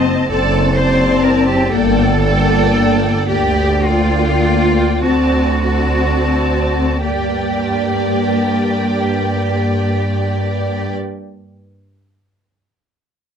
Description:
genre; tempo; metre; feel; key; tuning
classical, slow romantic movement for string orchestra; 28-43 BPM (dotted quarters); 6/8; rubato; G minor; A4 = 440 Hz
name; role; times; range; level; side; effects
warm studio violin section; melody; 0.0-10.9 s; G5 to A5; -25 LUFS; left 2 dB; none
rich symphonic violin section; second line; 0.0-10.9 s; D5 to D#5; -23 LUFS; right 1 dB; none
rich studio viola section; accompaniment; 0.0-10.9 s; Bb3 to C4; -18 LUFS; left 2 dB; none
clear symphonic cello section; bass; 0.0-10.9 s; C4 to C5; -20 LUFS; right 1 dB; none
clear symphonic double bass section; bass; 0.0-10.9 s; F#1 to G2; -18 LUFS; right 1 dB; none
room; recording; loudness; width
light reverb; dark, warm production; -13 LUFS; side -7 dB against mid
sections
0.0-7.0 A section; 7.0-11.1 B section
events
slowing down 0.0-7.0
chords
0.3 D7/F#; 1.7 Gm; 3.3 Gm/D; 5.0 D7; 7.0 Gm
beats
| 0.30 1.72 | 3.28 5.04 | 7.05 9.04

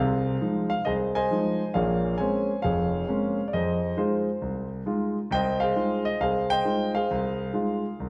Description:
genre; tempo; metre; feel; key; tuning
solo jazz; 134 BPM; 4/4; swing 65% on 8ths; F minor; A4 = 440 Hz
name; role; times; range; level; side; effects
warm grand piano; solo; 0.0-8.1 s; F1 to Ab5; -26 LUFS; equal; none
room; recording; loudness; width
wet recital hall reverb, RT60 1.4 s; none; -26 LUFS; mono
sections
0.0-8.1 A section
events
none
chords
0.0 Fm7; 1.7 Bbm9; 3.5 Fm7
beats
0.41 0.85 1.30 | 1.75 2.19 2.64 3.08 | 3.53 3.98 4.42 4.87 | 5.32 5.76 6.21 6.65 | 7.10 7.54 7.99

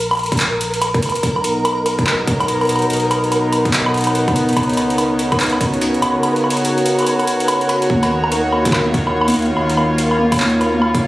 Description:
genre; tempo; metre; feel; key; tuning
IDM; 144 BPM; 4/4; swing 62% on 16ths; unclear; A4 = 440 Hz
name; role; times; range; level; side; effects
warm sub bass; bass; 0.0-11.1 s; Eb1 to Eb2; -27 LUFS; equal; none
flickering grainy texture; texture; 0.0-11.1 s; Bb4 to F5; -23 LUFS; right 1 dB; built-in reverb, sidechain pumping
booming analog drum machine; drums; 0.1-11.0 s; handclaps, hi-hat, woodblock; -20 LUFS; equal; tape echo
electronic kick drum; drums; 0.3-11.0 s; none; -20 LUFS; equal; none
warm analog pad; sustained chords; 1.2-11.1 s; B2 to Db5; -17 LUFS; equal; chorus
warbly dusty pluck; arpeggios; 7.9-11.0 s; Bb3 to Bb4; -20 LUFS; equal; chorus, tape echo
room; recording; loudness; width
moderate plate reverb, RT60 1.4 s; recorded on a phone in the room, studio reverb; -14 LUFS; side -17 dB against mid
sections
0.0-7.9 A section; 7.9-11.1 B section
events
none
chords
0.0 Bb5; 1.2 Bmaj7; 4.6 Db7sus4; 7.9 Ebm7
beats
0.40 0.82 | 1.23 1.65 2.07 2.48 | 2.90 3.32 3.73 4.15 | 4.57 4.98 5.40 5.82 | 6.23 6.65 7.07 7.48 | 7.90 8.32 8.73 9.15 | 9.57 9.98 10.40 10.82

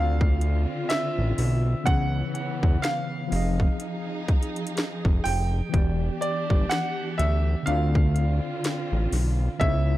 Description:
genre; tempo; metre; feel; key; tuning
contemporary R&B; 62 BPM; 4/4; swing 58% on 16ths; unclear; A4 = 440 Hz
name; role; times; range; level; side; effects
clear concert grand piano; melody; 0.0-10.0 s; D5 to G5; -30 LUFS; right 1 dB; analog delay
tine electric piano; accompaniment; 0.0-10.0 s; C#3 to Eb5; -32 LUFS; left 1 dB; medium stereo tremolo, analog delay
warm studio string section; sustained chords; 0.0-10.0 s; C#3 to Ab4; -34 LUFS; right 1 dB; none
fat analog bass; bass; 0.0-10.0 s; E1 to E2; -23 LUFS; equal; none
trap drum kit; drums; 0.2-9.9 s; hi-hat, kick drum, snare drum; -25 LUFS; equal; none
room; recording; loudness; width
little or no reverb; echo-heavy mix; -22 LUFS; side -15 dB against mid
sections
0.0-10.0 A section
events
none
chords
0.0 Dm7; 1.9 C#m7; 3.3 Fm7; 5.7 Em7; 7.7 Dm7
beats
0.90 | 1.86 2.83 3.80 4.77 | 5.74 6.70 7.67 8.64 | 9.61

